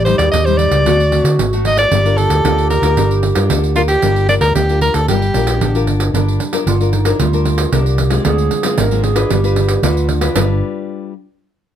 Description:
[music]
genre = samba and choro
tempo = 114 BPM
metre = 4/4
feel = straight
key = G minor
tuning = A4 = 440 Hz
[part]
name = bright soprano saxophone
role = melody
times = 0.0-5.8 s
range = F4 to Eb5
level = -16 LUFS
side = equal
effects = none
[part]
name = breathy clarinet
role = second line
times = 0.0-10.6 s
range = C#4 to Bb4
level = -21 LUFS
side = right 6 dB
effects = none
[part]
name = nylon-string guitar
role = accompaniment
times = 0.0-11.1 s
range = A2 to B4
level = -21 LUFS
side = left 8 dB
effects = none
[part]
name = fingered electric bass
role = bass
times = 0.0-10.6 s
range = G1 to D3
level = -16 LUFS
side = equal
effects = none
[part]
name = pandeiro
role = percussion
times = 0.1-10.5 s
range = none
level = -20 LUFS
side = right 5 dB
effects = none
[sound]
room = little or no reverb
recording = close, detailed microphones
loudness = -12 LUFS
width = side -10 dB against mid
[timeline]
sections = 0.0-6.1 A section; 6.1-10.4 B section; 10.4-11.8 C section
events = none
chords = 0.0 Am7b5; 0.9 D7; 1.9 Gm7; 8.3 Dm7b5; 9.3 G7

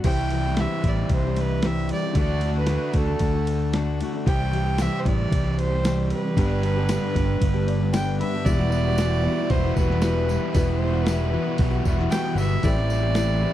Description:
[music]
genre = folk rock and heartland rock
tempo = 114 BPM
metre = 4/4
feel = straight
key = E minor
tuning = A4 = 439 Hz
[part]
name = rich fiddle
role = melody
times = 0.0-13.5 s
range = A4 to G5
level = -29 LUFS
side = right 2 dB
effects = none
[part]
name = dark upright piano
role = accompaniment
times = 0.0-13.5 s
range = C4 to B5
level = -39 LUFS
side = left 6 dB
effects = none
[part]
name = picked steel-string acoustic guitar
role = accompaniment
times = 0.0-13.5 s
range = E2 to G4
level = -29 LUFS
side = left 4 dB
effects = none
[part]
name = overdriven semi-hollow guitar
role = riff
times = 0.0-13.5 s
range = E2 to G4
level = -28 LUFS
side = right 1 dB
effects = none
[part]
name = fingered electric bass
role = bass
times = 0.0-13.4 s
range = E1 to D2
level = -24 LUFS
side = equal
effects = none
[part]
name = boom bap sampler-style drum kit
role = drums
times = 0.0-13.3 s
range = crash cymbal, hi-hat, kick drum, ride cymbal, snare drum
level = -25 LUFS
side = equal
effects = none
[part]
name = tambourine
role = percussion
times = 4.8-13.3 s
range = none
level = -43 LUFS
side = left 6 dB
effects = none
[sound]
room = studio ambience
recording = dry, close 1970s-style studio recording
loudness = -20 LUFS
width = side -12 dB against mid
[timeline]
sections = 0.0-8.5 A section; 8.5-13.5 B section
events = upright piano fill 7.4-8.5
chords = 0.0 C; 2.2 D; 4.3 C; 6.4 G; 8.5 Emadd9; 12.6 Am7

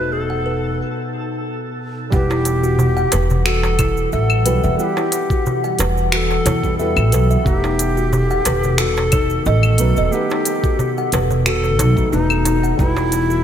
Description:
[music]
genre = organic downtempo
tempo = 90 BPM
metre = 4/4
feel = swing 53% on 16ths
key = E harmonic minor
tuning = A4 = 440 Hz
[part]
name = bright reedy low Native American-style wooden flute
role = melody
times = 0.0-13.4 s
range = D#4 to B4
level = -22 LUFS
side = left 1 dB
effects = ping-pong delay
[part]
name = felt-muted upright piano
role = accompaniment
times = 0.0-13.4 s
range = G3 to F#5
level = -28 LUFS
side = right 3 dB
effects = sidechain pumping, digital delay
[part]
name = warbly tape-like pad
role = sustained chords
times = 0.0-13.4 s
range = B2 to F#5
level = -26 LUFS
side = left 1 dB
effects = chorus, built-in reverb, sidechain pumping
[part]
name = kalimba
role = arpeggios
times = 0.0-13.4 s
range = D#4 to F#5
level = -24 LUFS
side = left 2 dB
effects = digital delay
[part]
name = upright bass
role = bass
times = 0.0-13.4 s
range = E1 to E2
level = -18 LUFS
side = equal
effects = sidechain pumping
[part]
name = twinkling granular texture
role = texture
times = 0.0-0.8 s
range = A4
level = -36 LUFS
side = right 2 dB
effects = built-in reverb
[part]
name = electronic kick drum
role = drums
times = 2.1-12.9 s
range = none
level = -19 LUFS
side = equal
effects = none
[part]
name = organic electronic drum kit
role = drums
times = 2.1-13.4 s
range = cabasa, claves, finger snaps, hi-hat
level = -22 LUFS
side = equal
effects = low-pass filter on perc, low-pass filter on hats, low-pass filter on snare, gated reverb
[part]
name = darbuka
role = percussion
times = 2.3-13.3 s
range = none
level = -24 LUFS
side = right 1 dB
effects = none
[sound]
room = moderate lush hall reverb, RT60 2.1 s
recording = bright 1980s-style digital production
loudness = -15 LUFS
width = side -9 dB against mid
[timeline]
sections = 0.0-2.1 A section; 2.1-13.4 B section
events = break 0.8-2.1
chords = 0.0 B7/E; 2.1 Emadd9; 7.5 B7/E; 12.8 Emadd9

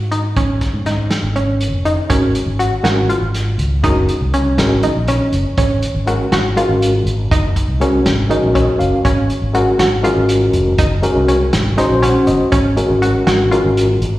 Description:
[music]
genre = progressive instrumental, band music in an uneven meter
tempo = 242 BPM (eighths)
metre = 7/8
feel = straight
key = Ab mixolydian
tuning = A4 = 440 Hz
[part]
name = analog pluck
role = arpeggios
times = 0.0-14.0 s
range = Db4 to Gb4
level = -19 LUFS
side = equal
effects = chorus, plate reverb, slapback echo
[part]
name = fretless electric bass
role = bass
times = 0.0-14.2 s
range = F1 to Ab2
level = -18 LUFS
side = equal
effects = none
[part]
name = vintage drum kit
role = drums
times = 0.1-14.1 s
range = hi-hat, kick drum, snare drum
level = -20 LUFS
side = equal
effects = none
[part]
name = overdriven tine electric piano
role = accompaniment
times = 2.1-13.9 s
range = Ab3 to Gb5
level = -16 LUFS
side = left 1 dB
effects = fast tremolo, plate reverb, slapback echo
[sound]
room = wet club reverb, RT60 0.7 s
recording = live gig heard through the venue's PA, recital hall reverb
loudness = -13 LUFS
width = side -16 dB against mid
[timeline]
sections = 0.0-2.1 A section; 2.1-14.2 B section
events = tine electric piano fill 8.3-9.0, 11.8-12.5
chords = 0.4 Dbadd9; 2.1 Ab7sus4; 3.8 Ebm7/Gb; 5.6 Ab7sus4; 7.3 Ebm7/Gb; 9.0 Ab7sus4; 10.8 Ebm7/Gb; 12.5 Ab7sus4

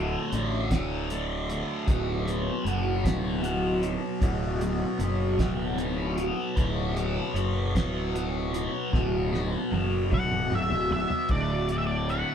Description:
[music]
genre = psychedelic rock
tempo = 51 BPM (dotted quarters)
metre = 6/8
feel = straight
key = unclear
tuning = A4 = 440 Hz
[part]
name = fuzz guitar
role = riff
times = 0.0-12.3 s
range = D2 to B3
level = -28 LUFS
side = equal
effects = distortion, phaser
[part]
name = fuzz fingered electric bass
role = bass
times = 0.0-12.2 s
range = D1 to A1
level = -30 LUFS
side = equal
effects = overdrive
[part]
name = cloth-damped thuddy drum kit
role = drums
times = 0.3-12.3 s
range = crash cymbal, hi-hat, kick drum, snare drum, toms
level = -28 LUFS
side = equal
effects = none
[part]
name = octave-fuzz lead guitar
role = melody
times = 10.1-12.3 s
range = D5 to F#5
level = -29 LUFS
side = left 1 dB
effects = distortion
[sound]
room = light reverb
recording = band playing live in one room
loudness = -25 LUFS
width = side -8 dB against mid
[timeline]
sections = 0.0-11.3 A section; 11.3-12.3 B section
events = drum fill 8.9-11.3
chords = 0.0 D5; 1.9 Bm/D; 11.3 D

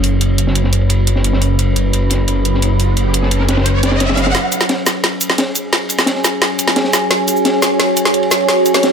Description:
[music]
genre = dark technical drum and bass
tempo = 174 BPM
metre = 4/4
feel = straight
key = unclear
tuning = A4 = 440 Hz
[part]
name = deep dark ambient pad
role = sustained chords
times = 0.0-8.9 s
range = F#4 to B5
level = -17 LUFS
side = right 1 dB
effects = chorus, built-in reverb
[part]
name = wide detuned saw bass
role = bass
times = 0.0-4.3 s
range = F#1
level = -14 LUFS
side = equal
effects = chorus, overdrive
[part]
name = crunchy breakbeat drum kit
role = drums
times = 0.0-8.9 s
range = ride cymbal, snare drum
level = -22 LUFS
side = equal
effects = high-pass filter on cymbals, low-pass filter on cymbals, high-pass filter on snare, low-pass filter on snare, high-pass filter on room, low-pass filter on room
[part]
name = drum and bass drum kit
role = drums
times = 0.0-8.9 s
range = cabasa, hi-hat, snare drum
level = -16 LUFS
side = equal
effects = high-pass filter on hats, high-pass filter on snare, high-pass filter on perc, high-pass filter on room
[part]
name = riser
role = sound effects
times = 2.4-4.3 s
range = none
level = -22 LUFS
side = right 1 dB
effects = none
[sound]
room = digital ambience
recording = none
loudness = -12 LUFS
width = side -6 dB against mid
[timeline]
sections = 0.0-4.3 A section; 4.3-8.9 B section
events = filter sweep on ambient pad 0.0-4.3; riser 2.4-4.3; build-up 4.3-8.9; drum fill 4.3-8.9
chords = 0.0 F#5; 4.3 F#sus2

